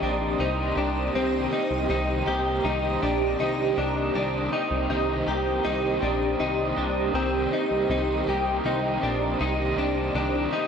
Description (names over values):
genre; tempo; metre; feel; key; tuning
dream pop; 80 BPM; 4/4; straight; C minor; A4 = 440 Hz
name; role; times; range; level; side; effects
overdriven semi-hollow guitar; accompaniment; 0.0-10.7 s; C3 to G4; -31 LUFS; right 3 dB; tremolo, lush chorus
shimmering ambient pad; sustained chords; 0.0-10.7 s; G4 to Eb6; -27 LUFS; right 3 dB; chorus, built-in reverb, phaser
direct-recorded clean electric guitar; arpeggios; 0.0-10.7 s; C4 to G4; -27 LUFS; left 4 dB; ensemble chorus, analog delay
chorused synth bass; bass; 0.0-10.5 s; Bb1 to C2; -30 LUFS; equal; none
room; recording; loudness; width
wet plate reverb, RT60 2.5 s; dreamy mix soaked in reverb; -23 LUFS; side -6 dB against mid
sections
0.0-10.7 A section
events
none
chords
0.0 Cm7